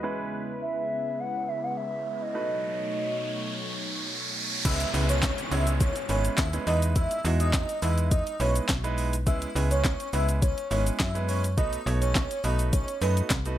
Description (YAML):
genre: dance-pop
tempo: 104 BPM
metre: 4/4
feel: straight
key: C# minor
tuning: A4 = 439 Hz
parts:
  - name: clear baby grand piano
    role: accompaniment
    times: 0.0-13.6 s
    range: G#3 to C#5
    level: -33 LUFS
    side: right 4 dB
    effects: sidechain pumping, low-pass filter
  - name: sweeping resonant pad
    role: sustained chords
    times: 0.0-4.6 s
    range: B2 to C#5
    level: -35 LUFS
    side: left 1 dB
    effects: chorus, sidechain pumping, low-pass filter
  - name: riser and downlifter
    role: sound effects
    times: 2.1-9.3 s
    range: none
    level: -35 LUFS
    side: right 1 dB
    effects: none
  - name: hollow clarinet-like synth lead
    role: melody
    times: 0.6-4.1 s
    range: D#5 to F#5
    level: -30 LUFS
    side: equal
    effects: chorus, low-pass filter, tape echo
  - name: airy dreamy lead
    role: melody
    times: 4.7-13.1 s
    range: B4 to E5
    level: -31 LUFS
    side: right 1 dB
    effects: chorus, sidechain pumping
  - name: slap-like FM bass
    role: bass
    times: 4.7-13.6 s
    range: G#1 to F#2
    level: -26 LUFS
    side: equal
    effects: sidechain pumping
  - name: smooth R&B drum kit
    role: drums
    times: 4.7-13.6 s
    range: crash cymbal, handclaps, hi-hat, kick drum, shaker, snare drum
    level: -28 LUFS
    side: equal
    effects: none
room: little or no reverb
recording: none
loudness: -24 LUFS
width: side -12 dB against mid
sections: 0.0-4.7 A section; 4.7-13.6 B section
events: riser 2.1-4.7; drop 4.7-13.6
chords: 0.0 C#m7; 2.3 B7; 4.7 C#m7; 6.7 Emaj7; 9.3 C#m7; 11.6 B7